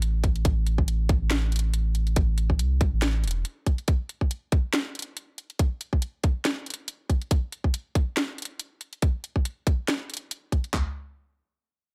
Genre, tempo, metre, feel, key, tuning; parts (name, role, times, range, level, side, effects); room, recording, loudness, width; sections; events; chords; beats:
deep dubstep; 140 BPM; 4/4; swing 55% on 16ths, half-time; A minor; A4 = 440 Hz
soft dub sub bass; bass; 0.0-3.4 s; E1 to C2; -26 LUFS; equal; tube saturation
garage drum kit; drums; 0.0-10.7 s; hi-hat, snare drum; -32 LUFS; equal; overdrive
garage drum kit; drums; 0.2-10.8 s; handclaps, kick drum, toms; -26 LUFS; equal; overdrive
little or no reverb; -27 LUFS; mono
0.0-10.7 A section; 10.7-11.9 B section
0.02 | 0.45 0.88 1.31 1.74 | 2.16 2.59 3.02 3.45 | 3.88 4.31 4.74 5.16 | 5.59 6.02 6.45 6.88 | 7.31 7.74 8.16 8.59 | 9.02 9.45 9.88 10.31 | 10.74